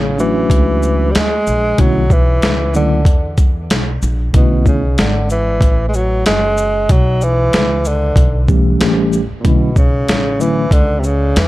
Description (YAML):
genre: hip hop, jazz-hop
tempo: 94 BPM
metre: 4/4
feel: swing 58% on 16ths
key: unclear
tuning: A4 = 445 Hz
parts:
  - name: breathy tenor saxophone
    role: melody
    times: 0.0-11.5 s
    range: A#2 to G#3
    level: -17 LUFS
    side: equal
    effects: tape echo
  - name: mellow tine electric piano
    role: accompaniment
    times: 0.0-10.6 s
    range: C#3 to G4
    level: -16 LUFS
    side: equal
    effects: medium stereo tremolo
  - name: upright bass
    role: bass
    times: 0.0-11.5 s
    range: F#1 to E2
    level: -17 LUFS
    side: equal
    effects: none
  - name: boom bap sampler-style drum kit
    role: drums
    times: 0.2-11.5 s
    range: hi-hat, kick drum, shaker, snare drum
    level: -14 LUFS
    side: equal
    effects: none
room: little or no reverb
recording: dark, warm production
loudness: -11 LUFS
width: side -17 dB against mid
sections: 0.0-11.5 A section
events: none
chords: 0.0 Dmaj9; 4.3 Bm11; 8.8 A7; 9.4 Dmaj9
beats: 0.51 1.15 | 1.79 2.43 3.07 3.70 | 4.34 4.98 5.62 6.26 | 6.90 7.53 8.17 8.81 | 9.45 10.09 10.72 11.36